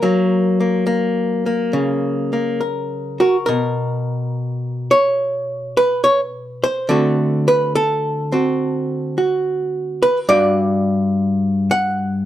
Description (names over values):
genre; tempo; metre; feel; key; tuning
solo jazz; 70 BPM; 4/4; swing 68% on 8ths, rubato; unclear; A4 = 440 Hz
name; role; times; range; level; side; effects
archtop guitar, miked and amplified; solo; 0.0-12.3 s; G2 to F#5; -16 LUFS; equal; none
room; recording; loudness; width
moderate studio reverb, RT60 0.8 s; none; -16 LUFS; side -12 dB against mid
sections
0.0-3.5 A section; 3.5-12.3 B section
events
none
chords
0.0 Gb; 3.5 N.C.; 6.9 D7; 10.3 G5